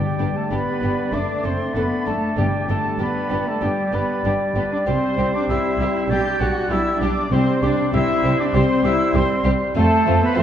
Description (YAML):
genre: quick classical-period movement for symphony orchestra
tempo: 97 BPM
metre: 4/4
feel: rubato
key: G major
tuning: A4 = 440 Hz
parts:
  - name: clear oboe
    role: second line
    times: 0.0-10.4 s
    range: C5 to D5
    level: -30 LUFS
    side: right 2 dB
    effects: none
  - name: silver concert flute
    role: second line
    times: 0.0-10.4 s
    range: G5 to G6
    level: -27 LUFS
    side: left 2 dB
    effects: none
  - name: warm bassoon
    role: accompaniment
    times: 0.0-10.4 s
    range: G3 to A3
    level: -27 LUFS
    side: right 1 dB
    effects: none
  - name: mellow French horn section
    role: sustained chords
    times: 0.0-10.0 s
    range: G3 to D4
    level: -27 LUFS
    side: left 3 dB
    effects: none
  - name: warm trumpet section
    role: stabs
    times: 0.0-10.4 s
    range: G4 to G5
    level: -29 LUFS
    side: equal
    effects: none
  - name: warm chamber cello section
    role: bass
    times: 0.0-10.4 s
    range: G3 to G4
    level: -24 LUFS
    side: right 1 dB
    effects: none
  - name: timpani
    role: percussion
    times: 0.0-3.3, 7.3-8.2 s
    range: G2 to C3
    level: -29 LUFS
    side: left 1 dB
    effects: none
  - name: warm chamber violin section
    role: melody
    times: 0.2-10.4 s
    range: F4 to A4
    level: -33 LUFS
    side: left 3 dB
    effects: none
  - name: rich chamber violin section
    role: second line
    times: 0.2-10.4 s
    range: C4 to D4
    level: -32 LUFS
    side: left 5 dB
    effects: none
  - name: warm chamber viola section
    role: accompaniment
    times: 0.2-10.4 s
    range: G3 to B3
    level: -31 LUFS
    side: equal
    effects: none
  - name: dark chamber double bass section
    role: bass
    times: 0.2-10.4 s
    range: F#1 to F2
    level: -24 LUFS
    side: right 2 dB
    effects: none
room: wet scoring stage reverb, RT60 1.9 s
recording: none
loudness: -18 LUFS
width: side -9 dB against mid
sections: 0.0-10.4 A section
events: none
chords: 0.0 G; 1.1 D/F#; 2.4 G; 4.9 C; 6.1 G/B; 7.3 C; 9.8 F